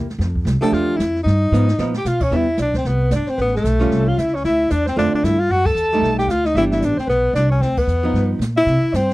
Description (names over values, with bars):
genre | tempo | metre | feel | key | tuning
jazz, small-group swing and bop | 226 BPM | 4/4 | swing 59% on 8ths | C major | A4 = 440 Hz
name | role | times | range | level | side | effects
archtop guitar, miked and amplified | accompaniment | 0.0-8.4 s | D3 to G4 | -20 LUFS | right 2 dB | none
upright bass | bass | 0.0-9.1 s | G1 to C3 | -20 LUFS | equal | none
jazz brush drum kit | drums | 0.1-9.1 s | brushed snare drum, crash cymbal, hi-hat, kick drum, snare drum | -27 LUFS | right 1 dB | none
breathy tenor saxophone | melody | 0.6-9.1 s | A3 to A4 | -19 LUFS | left 2 dB | none
breathy alto saxophone | second line | 2.0-9.1 s | A4 to A5 | -25 LUFS | right 3 dB | none
room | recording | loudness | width
little or no reverb | dry, close 1970s-style studio recording | -15 LUFS | side -18 dB against mid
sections
0.0-2.3 A section; 2.3-9.1 B section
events
drum fill 1.5-2.1; band accent 5.6, 7.8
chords
0.2 F69; 1.3 G7alt; 2.3 Cmaj7; 3.4 A7b13; 4.4 Dm7; 5.5 Esus24; 6.0 B7alt; 6.6 Em7; 7.6 Dmadd9; 8.1 G7alt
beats
| 0.20 0.47 0.73 0.99 | 1.26 1.52 1.79 2.05 | 2.32 2.58 2.85 3.11 | 3.38 3.64 3.91 4.17 | 4.44 4.70 4.97 5.23 | 5.50 5.76 6.03 6.29 | 6.56 6.82 7.09 7.35 | 7.62 7.88 8.15 8.41 | 8.68 8.94